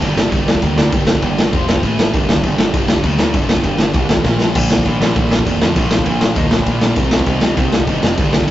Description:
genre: punk rock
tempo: 199 BPM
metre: 4/4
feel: straight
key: G minor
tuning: A4 = 438 Hz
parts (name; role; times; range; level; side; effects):
- biting overdriven guitar; riff; 0.0-8.5 s; G2 to C5; -24 LUFS; equal; none
- sludgy distorted guitar; riff; 0.0-8.5 s; G2 to C5; -24 LUFS; left 3 dB; overdrive
- sludgy distorted guitar; riff; 0.0-8.5 s; F2 to C4; -22 LUFS; right 4 dB; overdrive
- growling picked electric bass; bass; 0.0-8.5 s; F1 to F2; -21 LUFS; equal; overdrive
- raw garage drum kit; drums; 0.0-8.5 s; crash cymbal, kick drum, snare drum; -15 LUFS; equal; none
room: light reverb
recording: rough rehearsal-room recording, tube saturation, nothing above 7.7 kHz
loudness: -12 LUFS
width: side -13 dB against mid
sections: 0.0-8.5 A section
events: drum fill 4.3-4.6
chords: 0.0 Gm; 1.5 F5; 1.8 A5; 2.1 Gm; 4.3 Bb5; 4.6 Bb; 7.0 Cm

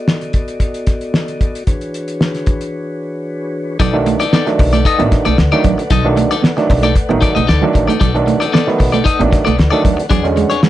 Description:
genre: funk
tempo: 114 BPM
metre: 4/4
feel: straight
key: unclear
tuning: A4 = 441 Hz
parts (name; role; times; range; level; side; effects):
- mellow tonewheel organ; sustained chords; 0.0-10.7 s; E3 to F#5; -24 LUFS; left 2 dB; slow rotary speaker
- cloth-damped thuddy drum kit; drums; 0.1-10.7 s; hi-hat, kick drum, snare drum; -15 LUFS; equal; none
- clean electric guitar; accompaniment; 3.8-10.7 s; D4 to D#5; -18 LUFS; left 5 dB; none
- mellow electric guitar; riff; 3.8-10.7 s; F#3 to B3; -19 LUFS; right 7 dB; none
- upright bass; bass; 3.8-10.4 s; A1 to E2; -18 LUFS; equal; none
- auto-wah clav; stabs; 3.9-10.5 s; D3 to D#4; -16 LUFS; right 3 dB; overdrive
room: light reverb, small room ambience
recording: nothing above 10.6 kHz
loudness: -12 LUFS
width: side -14 dB against mid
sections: 0.0-3.8 A section; 3.8-10.7 B section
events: break 2.7-3.8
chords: 0.0 B7#9; 1.7 E13; 3.8 B7#9; 10.1 E13

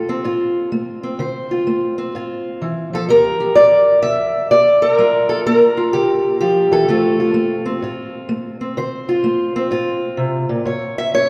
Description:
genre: acoustic country blues, solo or duo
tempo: 127 BPM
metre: 4/4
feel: swing 66% on 8ths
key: D minor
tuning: A4 = 441 Hz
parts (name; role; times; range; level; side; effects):
- fingerpicked steel-string acoustic guitar; solo; 0.0-11.3 s; A2 to E5; -17 LUFS; equal; none
room: wet church reverb, RT60 3.7 s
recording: recorded in a church or concert hall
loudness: -17 LUFS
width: mono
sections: 0.0-11.3 A section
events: none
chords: 0.0 Dm7; 3.1 Gm7; 6.9 Dm7; 10.7 A(#9)

